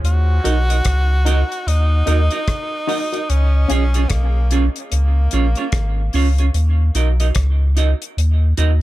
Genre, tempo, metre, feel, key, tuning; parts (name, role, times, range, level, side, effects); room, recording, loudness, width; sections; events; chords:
dub reggae; 74 BPM; 4/4; swing 60% on 16ths; Eb minor; A4 = 439 Hz
warm sub bass; bass; 0.0-8.8 s; Ab1 to Eb2; -15 LUFS; equal
damped 70s drum kit; drums; 0.0-8.8 s; hi-hat, kick drum, rim click; -24 LUFS; left 1 dB
clear tenor saxophone; melody; 0.1-6.1 s; Bb3 to Gb4; -25 LUFS; equal; dub echo
semi-hollow electric guitar; accompaniment; 0.4-8.7 s; Db4 to Eb5; -24 LUFS; right 7 dB; dub echo
filtered dub chord stab; stabs; 0.4-3.9 s; Db4 to Bb4; -28 LUFS; left 2 dB; phaser, dub echo
studio reverb; -15 LUFS; side -16 dB against mid
0.0-8.8 A section
0.0 Ebm; 3.3 Db; 6.5 Ebm